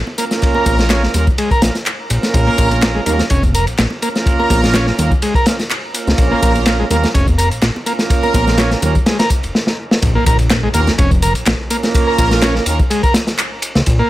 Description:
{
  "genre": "breakbeat, breaks",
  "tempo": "125 BPM",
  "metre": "4/4",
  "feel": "swing 54% on 16ths",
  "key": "Bb minor",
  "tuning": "A4 = 440 Hz",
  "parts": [
    { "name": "fat analog bass", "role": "bass", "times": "0.0-14.0 s", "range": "F1 to Eb2", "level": "-16 LUFS", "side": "equal", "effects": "none" },
    { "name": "congas", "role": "percussion", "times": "0.1-8.9 s", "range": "none", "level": "-26 LUFS", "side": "right 2 dB", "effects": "none" },
    { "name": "combo organ", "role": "riff", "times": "0.2-14.1 s", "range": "Ab3 to Bb4", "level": "-20 LUFS", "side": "equal", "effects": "vintage 12-bit sampler grit, low-pass filter, dub echo" },
    { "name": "clear brass ensemble", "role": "stabs", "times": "0.2-12.8 s", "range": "Bb3 to Bb4", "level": "-20 LUFS", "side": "right 4 dB", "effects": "dub echo" },
    { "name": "crunchy breakbeat drum kit", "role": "drums", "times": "0.2-14.0 s", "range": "kick drum, ride cymbal, snare drum", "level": "-16 LUFS", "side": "equal", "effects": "none" },
    { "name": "electronic tambourine and handclaps", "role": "drums", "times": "0.2-14.0 s", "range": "none", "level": "-24 LUFS", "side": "left 1 dB", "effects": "none" },
    { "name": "impact", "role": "sound effects", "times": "10.0-11.9 s", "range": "none", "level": "-24 LUFS", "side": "equal", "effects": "none" }
  ],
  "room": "little or no reverb",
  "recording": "none",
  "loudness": "-12 LUFS",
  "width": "side -15 dB against mid",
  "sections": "0.0-10.0 A section; 10.0-14.1 B section",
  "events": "drum fill 9.5-10.0; drop 10.0-14.1; impact 10.0-11.9",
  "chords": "0.0 Bbm"
}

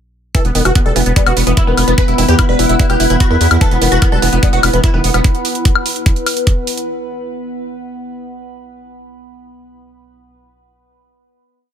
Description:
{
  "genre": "psychedelic trance",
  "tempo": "147 BPM",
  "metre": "4/4",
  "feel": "straight",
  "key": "unclear",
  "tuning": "A4 = 440 Hz",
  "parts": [
    { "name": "supersaw stab", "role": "melody", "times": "0.3-5.2 s", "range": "B3 to B4", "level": "-19 LUFS", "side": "equal", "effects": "phaser, sidechain pumping, digital delay" },
    { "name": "overtone-sweeping drone", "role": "sustained chords", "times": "0.8-6.9 s", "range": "B3 to B4", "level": "-20 LUFS", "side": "equal", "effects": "chorus, built-in reverb, sidechain pumping" },
    { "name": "woody wave-folded pluck", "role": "riff", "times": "0.3-5.2 s", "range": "D#3 to E4", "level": "-21 LUFS", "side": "moving between left 3 dB and right 4 dB", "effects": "chorus, phaser, auto-pan, sidechain pumping, tape echo" },
    { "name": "electronic hi-hat and woodblock", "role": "drums", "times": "0.3-6.9 s", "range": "none", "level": "-18 LUFS", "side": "left 2 dB", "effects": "none" },
    { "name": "electronic kick drum", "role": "drums", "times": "0.3-6.5 s", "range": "none", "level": "-12 LUFS", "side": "equal", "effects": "none" },
    { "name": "granular cloud pad", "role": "texture", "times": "1.4-5.2 s", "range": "E4 to E6", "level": "-25 LUFS", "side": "equal", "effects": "built-in reverb, sidechain pumping" },
    { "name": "round analog bass", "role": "bass", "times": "0.4-5.2 s", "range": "E1 to E2", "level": "-14 LUFS", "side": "equal", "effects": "none" }
  ],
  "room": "light reverb, digital ambience",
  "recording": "faint mains hum",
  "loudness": "-11 LUFS",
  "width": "side -9 dB against mid",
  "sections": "0.3-6.9 groove",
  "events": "fade-in on ambient pad 0.3-5.2",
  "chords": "0.3 E5"
}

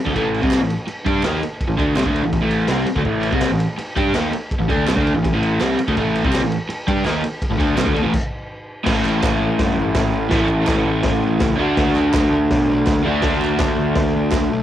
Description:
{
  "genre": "garage rock duo or trio",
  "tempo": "165 BPM",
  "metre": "4/4",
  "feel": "straight",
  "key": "unclear",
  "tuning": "A4 = 440 Hz",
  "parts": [
    { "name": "crunchy overdriven guitar", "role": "riff", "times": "0.1-14.6 s", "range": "A2 to G4", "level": "-18 LUFS", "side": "equal", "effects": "none" },
    { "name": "fuzz picked electric bass", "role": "bass", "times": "0.1-14.6 s", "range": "G1 to B2", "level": "-25 LUFS", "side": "equal", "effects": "overdrive" },
    { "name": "raw garage drum kit", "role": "drums", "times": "0.1-14.4 s", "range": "crash cymbal, kick drum, ride cymbal, snare drum", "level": "-23 LUFS", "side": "equal", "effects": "none" },
    { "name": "group handclap", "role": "percussion", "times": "0.5-14.4 s", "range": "none", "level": "-34 LUFS", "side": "right 8 dB", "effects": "none" }
  ],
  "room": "light reverb, small room ambience",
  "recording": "home recording on cassette",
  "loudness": "-16 LUFS",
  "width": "side -11 dB against mid",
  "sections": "0.0-8.9 A section; 8.9-14.6 B section",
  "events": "stop 8.1-8.9",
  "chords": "0.0 A5; 8.9 A; 11.6 D"
}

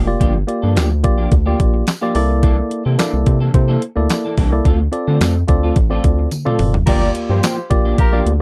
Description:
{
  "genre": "early-eighties boogie funk",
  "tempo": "108 BPM",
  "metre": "4/4",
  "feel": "straight",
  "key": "G dorian",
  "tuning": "A4 = 440 Hz",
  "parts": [
    { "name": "electric guitar at the edge of break-up", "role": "riff", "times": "0.0-8.3 s", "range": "E3 to C5", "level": "-26 LUFS", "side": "equal", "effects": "ensemble chorus" },
    { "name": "rubbery square bass", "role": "bass", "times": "0.0-8.4 s", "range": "F1 to D3", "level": "-19 LUFS", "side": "equal", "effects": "none" },
    { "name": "tine electric piano", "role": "accompaniment", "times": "0.1-8.3 s", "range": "Bb3 to D5", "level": "-23 LUFS", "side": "equal", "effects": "none" },
    { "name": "crisp 8-bit digital drum machine", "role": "drums", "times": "0.2-8.4 s", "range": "crash cymbal, handclaps, hi-hat, kick drum, snare drum, toms", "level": "-18 LUFS", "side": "equal", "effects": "overdrive" },
    { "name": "tambourine", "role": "percussion", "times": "0.8-7.6 s", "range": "none", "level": "-33 LUFS", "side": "equal", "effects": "none" },
    { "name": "mellow horn section", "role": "second line", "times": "6.9-8.2 s", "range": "F4 to D5", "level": "-24 LUFS", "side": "equal", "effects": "none" }
  ],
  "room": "little or no reverb",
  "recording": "dark, warm production",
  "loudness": "-16 LUFS",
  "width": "mono",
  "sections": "0.0-6.9 A section; 6.9-8.4 B section",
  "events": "drum fill 6.3-6.9",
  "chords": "0.0 Gm7; 2.2 C13; 4.7 Dm7; 6.9 Gm7"
}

